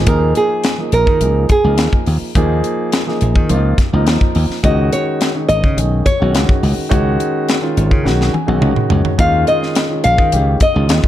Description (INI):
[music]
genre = electric jazz fusion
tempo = 105 BPM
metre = 4/4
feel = straight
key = unclear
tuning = A4 = 441 Hz
[part]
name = dark baby grand piano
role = accompaniment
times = 0.0-11.1 s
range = Eb3 to Ab5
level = -19 LUFS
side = equal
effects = none
[part]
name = slap bass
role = bass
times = 0.0-11.1 s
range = Ab1 to Eb3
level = -15 LUFS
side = equal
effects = none
[part]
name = nylon-string guitar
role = melody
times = 0.1-11.1 s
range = Ab4 to F5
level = -16 LUFS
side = equal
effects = slapback echo
[part]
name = crisp fusion drum kit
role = drums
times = 0.1-11.1 s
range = hi-hat, kick drum, snare drum, toms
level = -16 LUFS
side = equal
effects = none
[sound]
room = small room ambience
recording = dark, warm production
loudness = -12 LUFS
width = side -12 dB against mid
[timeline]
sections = 0.1-11.1 A section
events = nylon-string guitar solo 0.1-11.1; drum fill 8.1-9.2; grand piano fill 8.1-9.2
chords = 0.1 Eb9sus4; 4.6 Db9sus4; 9.2 Eb9sus4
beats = | 0.07 0.64 1.21 1.78 | 2.35 2.92 3.50 4.07 | 4.64 5.21 5.78 6.34 | 6.91 7.48 8.05 8.62 | 9.19 9.76 10.33 10.90